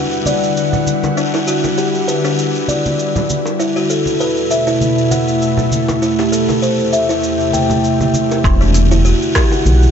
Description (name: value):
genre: organic downtempo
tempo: 99 BPM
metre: 4/4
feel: swing 55% on 16ths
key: E minor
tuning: A4 = 440 Hz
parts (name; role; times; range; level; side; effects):
- ethereal airy pad; sustained chords; 0.0-9.9 s; E2 to F#5; -18 LUFS; equal; ensemble chorus, built-in reverb, sidechain pumping, shimmer reverb
- organic electronic drum kit; drums; 0.1-9.9 s; hi-hat, rim click, shaker, woodblock; -24 LUFS; right 1 dB; low-pass filter on perc, low-pass filter on hats, low-pass filter on snare, low-pass filter on room
- buzzing kalimba; arpeggios; 0.3-9.5 s; D4 to G5; -16 LUFS; left 1 dB; digital delay, shimmer reverb
- congas and bongos; percussion; 0.3-9.8 s; none; -23 LUFS; equal; none
- smooth gliding synth bass; bass; 8.4-9.9 s; E1 to B1; -11 LUFS; equal; sidechain pumping
- electronic kick drum; drums; 8.4-9.5 s; none; -15 LUFS; equal; overdrive
room: moderate lush hall reverb, RT60 2.4 s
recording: nothing above 7.9 kHz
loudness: -13 LUFS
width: side -7 dB against mid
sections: 0.0-8.4 A section; 8.4-9.9 B section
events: none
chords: 0.0 Em9; 3.6 B7sus4/E; 6.0 Am7/E; 8.4 Em9